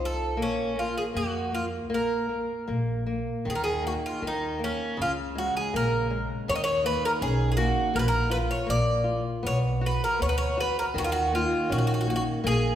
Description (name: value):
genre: fado-style ballad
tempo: 80 BPM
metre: 2/4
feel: rubato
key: Bb minor, Eb minor from 3.5 s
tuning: A4 = 440 Hz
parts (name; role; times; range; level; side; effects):
- Greek bouzouki; melody; 0.0-12.8 s; Db4 to Eb5; -27 LUFS; equal; none
- flamenco guitar; accompaniment; 0.0-12.8 s; Db3 to F#4; -30 LUFS; left 1 dB; none
- upright bass; bass; 0.0-12.8 s; Bb1 to F2; -30 LUFS; equal; none
room: wet recital hall reverb, RT60 1.8 s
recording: recorded in a church or concert hall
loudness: -24 LUFS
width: side -10 dB against mid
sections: 0.0-3.5 A section; 3.5-12.8 B section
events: none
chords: 0.4 Bb5; 3.5 Eb5; 5.0 Bbm7/Db; 6.5 Eb5; 7.9 Bb5; 9.5 B5; 11.0 Eb5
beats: | 0.38 1.14 | 1.91 2.68 | 3.46 4.22 | 4.98 5.73 | 6.48 7.21 | 7.95 8.69 | 9.45 10.22 | 10.96 11.71 | 12.45